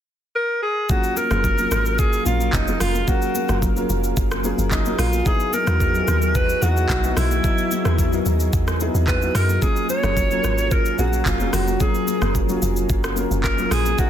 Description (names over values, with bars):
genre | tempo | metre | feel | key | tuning
amapiano | 110 BPM | 4/4 | straight | F# major | A4 = 444 Hz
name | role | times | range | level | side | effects
warm alto saxophone | melody | 0.4-14.1 s | D#4 to C#5 | -23 LUFS | equal | ping-pong delay
dark grand piano | accompaniment | 0.9-14.1 s | F#3 to E#5 | -26 LUFS | equal | none
glassy FM pad | sustained chords | 1.7-14.1 s | F#3 to E#5 | -28 LUFS | left 1 dB | ensemble chorus, built-in reverb
afro-pop drum kit | drums | 0.9-14.1 s | handclaps, hi-hat, kick drum, rim click, shaker | -23 LUFS | equal | soft clipping on snare
congas | percussion | 1.2-14.0 s | none | -33 LUFS | left 6 dB | none
deep log drum bass | bass | 1.3-14.0 s | E#1 to F#2 | -22 LUFS | equal | none
room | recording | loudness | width
digital ambience | dense, heavily limited modern master | -18 LUFS | side -10 dB against mid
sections
0.9-14.1 A section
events
drop 0.9-14.1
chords
0.0 N.C.; 0.9 F#maj9; 5.3 Emaj9; 9.6 F#maj9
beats
0.35 | 0.90 1.44 1.99 2.53 | 3.08 3.62 4.17 4.71 | 5.26 5.80 6.35 6.89 | 7.44 7.99 8.53 9.08 | 9.62 10.17 10.71 11.26 | 11.80 12.35 12.89 13.44 | 13.99